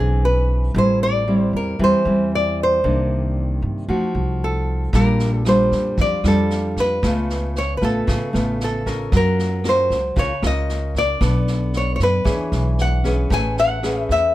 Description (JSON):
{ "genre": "bossa nova", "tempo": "115 BPM", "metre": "4/4", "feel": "straight", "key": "unclear", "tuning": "A4 = 441 Hz", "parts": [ { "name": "nylon-string guitar", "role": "melody", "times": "0.0-14.3 s", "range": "G#4 to G#5", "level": "-21 LUFS", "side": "equal", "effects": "none" }, { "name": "nylon-string guitar", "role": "accompaniment", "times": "0.0-14.3 s", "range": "A2 to C#5", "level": "-22 LUFS", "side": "equal", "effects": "none" }, { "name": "upright bass", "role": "bass", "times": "0.0-14.3 s", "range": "A1 to G2", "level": "-21 LUFS", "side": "equal", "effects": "none" }, { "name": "swinging big-band drum kit", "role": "drums", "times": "4.9-14.2 s", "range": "kick drum, rim click, snare drum", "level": "-26 LUFS", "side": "equal", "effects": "none" } ], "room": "light reverb", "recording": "none", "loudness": "-17 LUFS", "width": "side -15 dB against mid", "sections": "0.0-14.3 A section", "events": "none", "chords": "0.0 E7b13; 0.8 Am7; 2.8 Cm9; 3.9 F7b9; 4.9 Bb6; 7.0 Dbaug7; 9.1 Gbmaj7; 11.2 Bm7; 12.3 E13; 13.3 Amaj9", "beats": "0.23 | 0.75 1.28 1.80 2.32 | 2.84 3.37 3.89 4.41 | 4.93 5.46 5.98 6.50 | 7.03 7.55 8.07 8.60 | 9.12 9.64 10.17 10.69 | 11.21 11.74 12.26 12.78 | 13.31 13.83" }